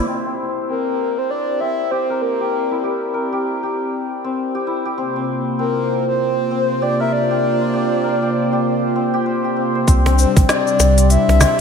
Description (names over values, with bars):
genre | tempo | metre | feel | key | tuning
organic downtempo | 98 BPM | 4/4 | swing 60% on 16ths | C mixolydian | A4 = 440 Hz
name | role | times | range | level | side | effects
warm analog pad | sustained chords | 0.0-11.6 s | C3 to D5 | -22 LUFS | equal | chorus, sidechain pumping
santur | arpeggios | 0.0-11.6 s | C4 to C5 | -23 LUFS | left 2 dB | low-pass filter, ping-pong delay
breathy flute-like synth lead | melody | 0.7-11.6 s | Bb4 to E5 | -20 LUFS | left 1 dB | wide subtle chorus, digital delay
warm sub bass | bass | 9.9-11.5 s | Bb1 to C2 | -14 LUFS | equal | sidechain pumping
electronic kick drum | drums | 9.9-10.5 s | none | -13 LUFS | equal | none
organic electronic drum kit | drums | 9.9-11.6 s | cabasa, hi-hat, snare drum | -21 LUFS | left 1 dB | low-pass filter on perc, low-pass filter on snare, low-pass filter on hats, low-pass filter on room, gated reverb
cajon | percussion | 10.1-11.6 s | none | -22 LUFS | right 3 dB | none
room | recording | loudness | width
wet lush hall reverb, RT60 2.4 s | bright 1980s-style digital production | -16 LUFS | side -6 dB against mid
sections
0.1-9.9 A section; 9.9-11.6 B section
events
filter sweep on drum 0.1-9.9; filter sweep on santur 0.1-9.9; filter sweep on analog synth pad 0.1-9.9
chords
0.1 C7; 5.0 Bb6/C; 9.9 C7